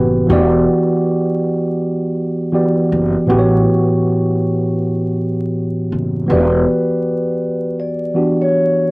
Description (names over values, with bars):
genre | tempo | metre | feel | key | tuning
lo-fi hip hop | 80 BPM | 4/4 | swing 65% on 16ths | E dorian | A4 = 442 Hz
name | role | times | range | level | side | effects
tine electric piano | accompaniment | 0.0-8.9 s | A2 to D5 | -14 LUFS | equal | cassette tape
upright bass | bass | 0.0-6.6 s | E1 to A1 | -18 LUFS | equal | tube saturation
vibraphone with soft mallets | melody | 6.3-8.9 s | B4 to D5 | -18 LUFS | left 1 dB | cassette tape
room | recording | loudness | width
moderate booth ambience, RT60 0.2 s | home recording on cassette, vinyl crackle | -14 LUFS | side -26 dB against mid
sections
0.0-8.9 A section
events
none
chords
0.3 Em9; 3.3 A13; 6.3 Em9